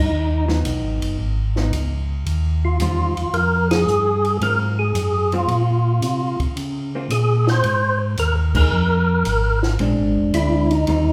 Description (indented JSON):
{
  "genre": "soul jazz organ trio",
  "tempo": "112 BPM",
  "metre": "4/4",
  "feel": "swing 69% on 8ths",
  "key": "unclear",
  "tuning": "A4 = 441 Hz",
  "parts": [
    { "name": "percussive tonewheel organ", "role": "melody", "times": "0.0-11.1 s", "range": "Eb4 to C5", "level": "-23 LUFS", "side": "equal", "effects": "slow rotary speaker, overdrive, chorus vibrato" },
    { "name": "mellow tonewheel organ", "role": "bass", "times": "0.0-11.1 s", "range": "F1 to Db3", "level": "-22 LUFS", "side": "equal", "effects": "chorus vibrato, slow rotary speaker" },
    { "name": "vintage hollow-body jazz guitar", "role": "accompaniment", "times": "0.5-11.1 s", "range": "Eb3 to Ab4", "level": "-27 LUFS", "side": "equal", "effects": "none" },
    { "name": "compact cocktail drum kit", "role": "drums", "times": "0.5-11.0 s", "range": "crash cymbal, hi-hat, kick drum, ride cymbal, snare drum", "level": "-30 LUFS", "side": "equal", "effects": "none" }
  ],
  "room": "wet large studio reverb, RT60 1.2 s",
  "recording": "heard from further back in the room",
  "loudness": "-19 LUFS",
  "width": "mono",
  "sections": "0.0-11.1 A section",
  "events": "band accent 3.6, 8.4",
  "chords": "0.1 Abm7; 1.2 Db9; 2.3 Eb69; 4.4 Ab13; 6.6 Dbmaj13; 8.7 Fmadd11; 9.8 Bb9"
}